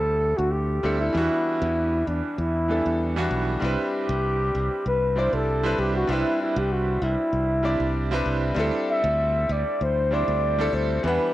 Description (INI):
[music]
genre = sunset chillout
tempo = 97 BPM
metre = 4/4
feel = swing 53% on 16ths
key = C lydian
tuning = A4 = 440 Hz
[part]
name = dark flugelhorn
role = melody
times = 0.0-11.3 s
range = D4 to E5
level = -25 LUFS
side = equal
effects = cassette tape, analog delay
[part]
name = bright grand piano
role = accompaniment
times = 0.0-11.3 s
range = E3 to F#5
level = -27 LUFS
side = right 1 dB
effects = auto-pan, cassette tape
[part]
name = modern bright fingered electric bass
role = bass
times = 0.0-11.2 s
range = B1 to E2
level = -26 LUFS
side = equal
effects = none
[sound]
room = moderate studio ambience, RT60 0.5 s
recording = home recording on cassette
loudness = -21 LUFS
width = side -14 dB against mid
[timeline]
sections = 0.0-3.6 A section; 3.6-11.3 B section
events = none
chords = 0.0 D9sus4; 1.1 Em9; 3.6 Cmaj9; 8.6 D9sus4